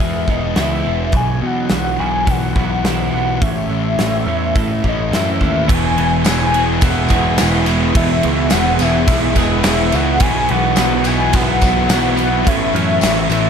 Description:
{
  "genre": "rock, shoegaze and dream pop",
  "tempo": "106 BPM",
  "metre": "4/4",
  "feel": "straight",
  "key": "E major",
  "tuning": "A4 = 440 Hz",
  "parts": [
    { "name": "warm velvety synth lead", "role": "melody", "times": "0.0-13.5 s", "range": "D#5 to G#5", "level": "-20 LUFS", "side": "left 2 dB", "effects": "chorus, slapback echo" },
    { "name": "twelve-string electric guitar", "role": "arpeggios", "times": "0.0-13.5 s", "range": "F#3 to A4", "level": "-27 LUFS", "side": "right 13 dB", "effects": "analog chorus, slapback echo" },
    { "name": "overdriven semi-hollow guitar", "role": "riff", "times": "0.0-13.5 s", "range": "A2 to E4", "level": "-23 LUFS", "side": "right 13 dB", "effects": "reverse reverb" },
    { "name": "thick fuzz guitar", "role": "riff", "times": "0.0-13.5 s", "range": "A2 to E4", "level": "-22 LUFS", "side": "left 12 dB", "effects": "distortion, lush chorus" },
    { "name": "growling picked electric bass", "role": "bass", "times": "0.0-13.5 s", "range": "E1 to B2", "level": "-20 LUFS", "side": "equal", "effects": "overdrive" },
    { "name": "gated 80s drum kit", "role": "drums", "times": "0.3-13.4 s", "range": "crash cymbal, hi-hat, kick drum, snare drum", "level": "-19 LUFS", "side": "equal", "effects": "none" },
    { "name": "shimmering ambient pad", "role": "sustained chords", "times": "6.7-13.5 s", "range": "E3 to E5", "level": "-25 LUFS", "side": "right 3 dB", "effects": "chorus, built-in reverb" },
    { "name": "overdriven electric guitar", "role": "riff", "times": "5.7-13.5 s", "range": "E2 to B3", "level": "-21 LUFS", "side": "equal", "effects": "none" },
    { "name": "tambourine", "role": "percussion", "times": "6.2-13.4 s", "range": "none", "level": "-31 LUFS", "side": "left 17 dB", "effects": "none" }
  ],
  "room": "light reverb",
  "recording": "none",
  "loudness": "-13 LUFS",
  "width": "side -7 dB against mid",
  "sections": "0.0-5.7 A section; 5.7-13.5 A section",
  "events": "none",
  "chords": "0.0 E; 1.1 Bsus4; 3.4 A; 5.7 E; 10.2 Bsus4; 12.5 A",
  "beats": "0.00 0.57 | 1.14 1.71 2.28 2.85 | 3.42 3.99 4.56 5.13 | 5.69 6.26 6.83 7.39 | 7.96 8.52 9.08 9.65 | 10.21 10.78 11.34 11.90 | 12.47 13.03"
}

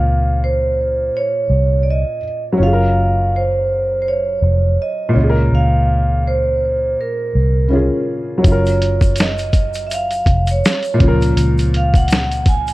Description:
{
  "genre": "lo-fi hip hop",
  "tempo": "82 BPM",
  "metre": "4/4",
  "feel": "swing 57% on 16ths",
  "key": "Db major",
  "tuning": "A4 = 441 Hz",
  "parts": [
    { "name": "vibraphone with medium hard mallets", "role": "melody", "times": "0.0-12.7 s", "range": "Bb4 to Ab5", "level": "-19 LUFS", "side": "right 2 dB", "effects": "low-pass filter" },
    { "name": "felt-muted upright piano", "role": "accompaniment", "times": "0.0-12.7 s", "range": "Bb2 to Bb4", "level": "-20 LUFS", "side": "left 1 dB", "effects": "cassette tape, low-pass filter" },
    { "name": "vintage muted fingered electric bass", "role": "bass", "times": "0.0-12.7 s", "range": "F1 to Db2", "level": "-17 LUFS", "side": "equal", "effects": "none" },
    { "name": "lo-fi sampler-style drum kit", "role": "drums", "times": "8.4-12.7 s", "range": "hi-hat, kick drum, snare drum", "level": "-15 LUFS", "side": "equal", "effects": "none" },
    { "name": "tube shaker", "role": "percussion", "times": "8.5-12.7 s", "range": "none", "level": "-37 LUFS", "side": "left 4 dB", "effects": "none" }
  ],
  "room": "studio ambience",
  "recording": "cassette tape",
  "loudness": "-13 LUFS",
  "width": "side -18 dB against mid",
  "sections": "0.0-12.7 A section",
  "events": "none",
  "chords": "0.0 Db6; 2.6 Gbmaj7; 5.2 Db6; 8.4 Gbmaj7; 11.0 Db6",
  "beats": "0.40 1.13 1.86 | 2.60 3.33 4.06 4.79 | 5.52 6.25 6.99 7.72 | 8.45 9.18 9.91 10.64 | 11.38 12.11"
}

